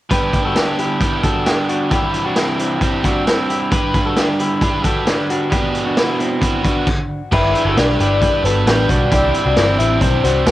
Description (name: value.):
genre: jangly indie pop.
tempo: 133 BPM.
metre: 4/4.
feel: straight.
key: G major.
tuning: A4 = 440 Hz.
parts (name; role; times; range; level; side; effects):
biting overdriven guitar; accompaniment; 0.1-10.5 s; G2 to B4; -20 LUFS; right 3 dB; cassette tape.
electric guitar at the edge of break-up; arpeggios; 0.1-10.5 s; B3 to B4; -21 LUFS; left 2 dB; spring reverb, cassette tape.
raw garage drum kit; drums; 0.1-10.5 s; crash cymbal, hi-hat, kick drum, snare drum; -19 LUFS; equal; cassette tape.
soft octave-layered synth lead; melody; 7.3-10.5 s; B4 to E5; -18 LUFS; left 2 dB; chorus, phaser.
vintage muted picked electric bass; bass; 7.3-10.5 s; G1 to C2; -18 LUFS; equal; none.
room: light reverb.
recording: home recording on cassette.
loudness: -14 LUFS.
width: side -15 dB against mid.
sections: 0.1-7.3 A section; 7.3-10.5 B section.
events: stop 6.9-7.3.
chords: 0.1 G; 1.9 Cadd9; 3.7 G; 5.5 Bm; 7.3 G; 9.1 Cadd9.